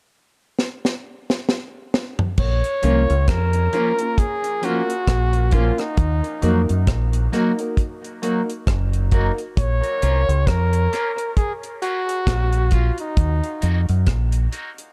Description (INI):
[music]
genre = dub reggae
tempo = 67 BPM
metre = 4/4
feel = swing 58% on 16ths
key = Bb minor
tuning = A4 = 439 Hz
[part]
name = deep reggae drum kit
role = drums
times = 0.6-14.9 s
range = crash cymbal, hi-hat, kick drum, rim click, snare drum, toms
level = -24 LUFS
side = equal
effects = none
[part]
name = clear flugelhorn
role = melody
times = 2.4-13.8 s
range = Eb4 to Db5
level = -27 LUFS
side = equal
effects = dub echo
[part]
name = deep dub fingered electric bass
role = bass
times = 2.4-14.5 s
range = Gb1 to Gb2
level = -21 LUFS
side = equal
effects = none
[part]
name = semi-hollow electric guitar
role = accompaniment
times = 2.8-14.7 s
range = F3 to Gb4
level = -29 LUFS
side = equal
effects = tremolo, high-pass filter, dub echo
[part]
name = dark concert grand piano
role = stabs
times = 2.8-14.9 s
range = Bb3 to Bb4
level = -31 LUFS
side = equal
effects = high-pass filter, dub echo
[sound]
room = light reverb, small room ambience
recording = dark, warm production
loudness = -20 LUFS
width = mono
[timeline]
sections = 0.0-2.4 A section; 2.4-14.9 B section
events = drum fill 0.6-2.4; filter sweep 6.0-14.9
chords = 0.0 N.C.; 2.4 Bbm; 6.0 Ebm; 9.6 Bbm; 13.2 Ebm